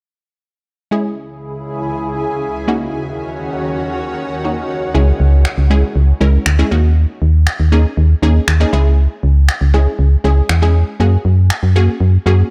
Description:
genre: dance-pop.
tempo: 119 BPM.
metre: 4/4.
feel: straight.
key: C# dorian.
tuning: A4 = 440 Hz.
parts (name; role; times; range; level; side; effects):
unison pluck; accompaniment; 0.9-12.5 s; G#3 to A#4; -21 LUFS; equal; none.
shimmering ambient pad; sustained chords; 1.3-4.9 s; C#2 to G#4; -24 LUFS; equal; chorus, built-in reverb, phaser.
solid FM bass; bass; 4.9-12.4 s; C#2 to F#2; -13 LUFS; equal; none.
electronic finger snaps; drums; 5.5-11.6 s; none; -23 LUFS; equal; overdrive.
room: digital ambience.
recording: dark, warm production.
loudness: -14 LUFS.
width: mono.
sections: 0.9-4.9 A section; 4.9-12.5 B section.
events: none.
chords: 0.9 C#m; 2.7 D#m7; 4.7 C#m; 6.7 D#m7; 8.7 C#m; 11.0 F#add9.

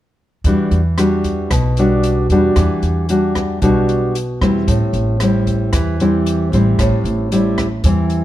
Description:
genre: bossa nova.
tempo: 114 BPM.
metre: 4/4.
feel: straight.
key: E minor.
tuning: A4 = 442 Hz.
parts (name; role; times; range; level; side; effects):
upright bass; bass; 0.4-8.2 s; A1 to E2; -18 LUFS; equal; none.
open jazz drum kit; drums; 0.4-8.2 s; hi-hat, kick drum, rim click; -22 LUFS; equal; none.
nylon-string guitar; accompaniment; 0.5-8.2 s; A2 to F#4; -15 LUFS; equal; none.
room: light reverb.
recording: dark, warm production.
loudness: -13 LUFS.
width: side -14 dB against mid.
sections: 0.5-8.2 A section.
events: none.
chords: 0.5 Em9; 4.7 Am7.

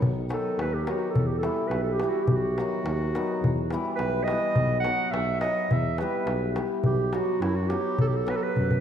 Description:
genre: balkan folk, Balkan wedding band.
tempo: 105 BPM.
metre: 2/4.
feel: straight.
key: unclear.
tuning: A4 = 440 Hz.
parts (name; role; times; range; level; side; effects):
hammered dulcimer; accompaniment; 0.0-8.8 s; D#3 to G4; -30 LUFS; left 3 dB; none.
mellow tuba; bass; 0.0-8.8 s; B1 to F#2; -30 LUFS; equal; none.
darbuka; percussion; 0.0-8.8 s; none; -29 LUFS; left 1 dB; none.
warm clarinet; second line; 0.3-8.8 s; E4 to F#5; -28 LUFS; right 3 dB; tape echo.
room: wet lush hall reverb, RT60 1.8 s, studio reverb.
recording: dreamy mix soaked in reverb.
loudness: -24 LUFS.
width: side -8 dB against mid.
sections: 0.0-8.8 A section.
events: clarinet solo 0.0-8.8; drum fill 8.6.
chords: 0.0 B; 1.2 Em; 2.3 B; 3.4 Em; 4.6 B; 5.7 Em; 6.9 B.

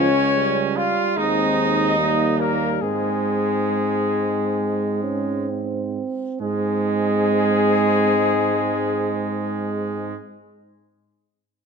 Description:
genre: classical, brass quintet.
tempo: 65-75 BPM.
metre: 4/4.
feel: rubato.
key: Ab major.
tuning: A4 = 439 Hz.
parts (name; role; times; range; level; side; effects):
mellow trumpet; melody; 0.0-10.2 s; Ab4 to F5; -25 LUFS; left 11 dB; none.
bright trumpet; second line; 0.0-10.1 s; Ab3 to F4; -26 LUFS; right 8 dB; none.
warm French horn; accompaniment; 0.0-10.2 s; Bb3 to Db4; -27 LUFS; left 8 dB; none.
warm euphonium; accompaniment; 0.0-10.2 s; G3 to Db4; -24 LUFS; right 3 dB; none.
clear tuba; bass; 0.0-10.2 s; Db2 to Ab2; -25 LUFS; right 5 dB; none.
room: moderate recital hall reverb, RT60 1.5 s.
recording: close, detailed microphones.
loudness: -19 LUFS.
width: side -5 dB against mid.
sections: 0.0-6.4 A section; 6.4-10.0 B section.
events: slowing down 0.0-6.4.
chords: 0.0 Db; 1.2 Ab/Eb; 2.0 Eb; 2.8 Ab.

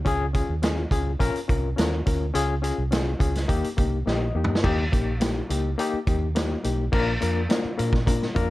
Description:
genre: uptempo 1960s-style soul.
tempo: 105 BPM.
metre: 4/4.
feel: straight.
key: unclear.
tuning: A4 = 439 Hz.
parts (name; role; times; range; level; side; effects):
overdriven reed electric piano; accompaniment; 0.0-8.5 s; Bb3 to Eb5; -27 LUFS; left 4 dB; fast tremolo, plate reverb.
vintage muted fingered electric bass; bass; 0.1-8.5 s; Bb1 to Bb2; -26 LUFS; right 1 dB; none.
vintage drum kit; drums; 0.1-8.5 s; crash cymbal, hi-hat, kick drum, snare drum, toms; -25 LUFS; right 1 dB; none.
room: light reverb.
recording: dark, warm production.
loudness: -22 LUFS.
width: side -17 dB against mid.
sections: 0.0-4.6 A section; 4.6-6.9 B section; 6.9-8.5 C section.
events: reed electric piano fill 3.8-4.6; drum fill 4.1-4.6.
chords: 0.1 Db; 1.2 Bbm; 2.4 Db; 3.5 Eb; 6.9 Bb.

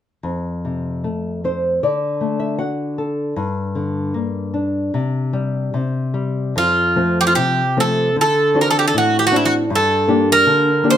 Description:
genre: fado-style ballad.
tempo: 76 BPM.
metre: 2/4.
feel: uneven beats, rubato.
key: F major.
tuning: A4 = 439 Hz.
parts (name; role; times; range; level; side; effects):
nylon-string guitar; accompaniment; 0.2-11.0 s; F2 to F#5; -19 LUFS; left 2 dB; none.
Greek bouzouki; melody; 6.6-11.0 s; E4 to C5; -15 LUFS; right 2 dB; plate reverb.
room: moderate studio reverb, RT60 0.6 s.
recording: none.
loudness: -16 LUFS.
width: side -10 dB against mid.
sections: 0.2-6.6 A section; 6.6-11.0 B section.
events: nylon-string guitar fill 1.1-3.4.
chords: 0.2 F; 1.8 D; 3.4 Gm; 4.9 C5; 6.6 F; 8.2 D7; 9.7 Gm.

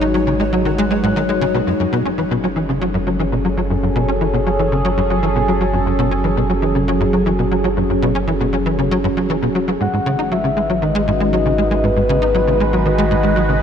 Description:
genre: ambient, sequencer-driven space music.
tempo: 118 BPM.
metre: 4/4.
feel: straight.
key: F# dorian.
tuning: A4 = 440 Hz.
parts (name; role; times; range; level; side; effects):
sweeping resonant pad; sustained chords; 0.0-13.6 s; D#3 to B4; -19 LUFS; right 1 dB; chorus, phaser, shimmer reverb.
concert harp; arpeggios; 0.0-4.0 s; F#3 to F#5; -24 LUFS; moving between left 6 dB and right 1 dB; auto-pan, shimmer reverb, ping-pong delay.
tight sequencer bass; riff; 0.0-13.6 s; F#2 to D#4; -19 LUFS; equal; ensemble chorus, shimmer reverb, ping-pong delay.
warm sub bass; bass; 0.0-13.6 s; F#1 to G#1; -23 LUFS; equal; none.
pulsing gated texture; texture; 0.0-1.7 s; C#5; -38 LUFS; right 3 dB; none.
soft octave-layered synth lead; melody; 9.8-13.6 s; B4 to F#5; -19 LUFS; left 3 dB; chorus, shimmer reverb, ping-pong delay.
room: wet huge ambient reverb, RT60 8.5 s.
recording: none.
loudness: -15 LUFS.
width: side -8 dB against mid.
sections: 0.0-1.7 A section; 1.7-13.6 B section.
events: none.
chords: 0.0 G#m7; 1.7 F#madd9; 9.8 G#m7.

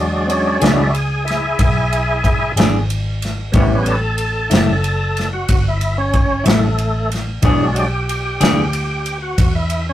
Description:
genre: slow blues.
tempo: 62 BPM (dotted quarters).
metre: 12/8.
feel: straight.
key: E mixolydian.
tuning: A4 = 440 Hz.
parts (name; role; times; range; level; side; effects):
tonewheel organ; sustained chords; 0.0-9.9 s; F#3 to A4; -19 LUFS; equal; slow rotary speaker, overdrive, chorus vibrato.
vintage muted fingered electric bass; bass; 0.0-9.9 s; F#1 to E2; -20 LUFS; equal; none.
natural country drum kit; drums; 0.3-9.9 s; kick drum, ride cymbal, snare drum; -19 LUFS; equal; none.
semi-hollow electric guitar; accompaniment; 0.6-8.6 s; A2 to G#4; -18 LUFS; left 2 dB; harmonic tremolo.
room: wet booth ambience, RT60 0.2 s.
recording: rough rehearsal-room recording, tube saturation.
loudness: -14 LUFS.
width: side -12 dB against mid.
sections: 0.0-9.9 A section.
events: tonewheel organ solo 0.0-9.9.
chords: 0.0 E7; 3.5 A7; 7.4 E7.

